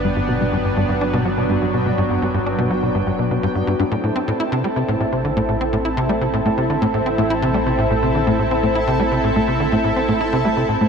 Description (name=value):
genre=ambient, sequencer-driven space music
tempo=124 BPM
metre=4/4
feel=straight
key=A dorian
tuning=A4 = 439 Hz
part: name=lush unison pad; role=sustained chords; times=0.0-10.9 s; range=F#3 to A4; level=-20 LUFS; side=equal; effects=chorus
part: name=soft round pluck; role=arpeggios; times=0.0-10.9 s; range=G3 to A5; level=-26 LUFS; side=moving between left 5 dB and right 3 dB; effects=chorus, auto-pan, analog delay
part: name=tight sequencer bass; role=riff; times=0.0-10.9 s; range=G2 to E4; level=-21 LUFS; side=equal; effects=wide subtle chorus, analog delay
part: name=analog drone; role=bass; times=0.0-10.9 s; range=G1 to A1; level=-28 LUFS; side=equal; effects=chorus
part: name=bubbling stepped-filter texture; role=texture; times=0.0-10.9 s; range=G5 to A5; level=-34 LUFS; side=equal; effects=chorus, built-in reverb
room=wet huge ambient reverb, RT60 8.8 s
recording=in a vast, echoing space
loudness=-16 LUFS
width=side -6 dB against mid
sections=0.0-10.9 A section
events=filter sweep on analog synth bass 0.0-10.9; filter sweep on synth arpeggio sound 0.0-10.9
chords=0.0 G; 3.9 Am